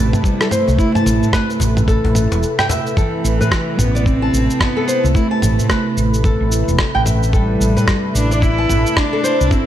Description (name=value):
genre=organic downtempo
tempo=110 BPM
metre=4/4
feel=swing 60% on 16ths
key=A minor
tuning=A4 = 440 Hz
part: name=dark cello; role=melody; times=0.0-9.7 s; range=E3 to E4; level=-20 LUFS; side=right 1 dB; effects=ping-pong delay, shimmer reverb
part: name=warm analog pad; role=sustained chords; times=0.0-9.7 s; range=C3 to B4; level=-24 LUFS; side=equal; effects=chorus, sidechain pumping, shimmer reverb
part: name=flamenco guitar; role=arpeggios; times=0.0-9.7 s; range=E4 to A5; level=-22 LUFS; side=equal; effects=tape echo, shimmer reverb
part: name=woody fretless electric bass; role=bass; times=0.0-9.5 s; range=E1 to A2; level=-17 LUFS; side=equal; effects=lush chorus, sidechain pumping
part: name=dusty soul sampler-style drum kit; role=drums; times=0.1-9.6 s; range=cabasa, rim click, toms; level=-22 LUFS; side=equal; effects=studio reverb
part: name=electronic kick drum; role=drums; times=0.2-9.6 s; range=none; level=-17 LUFS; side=equal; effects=studio reverb
part: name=cajon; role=percussion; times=0.7-2.8 s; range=none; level=-25 LUFS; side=left 2 dB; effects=none
room=light reverb, small room reverb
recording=dark, warm production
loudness=-13 LUFS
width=side -11 dB against mid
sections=0.0-3.0 A section; 3.0-9.7 A section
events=break 2.4-3.0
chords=0.0 Amadd9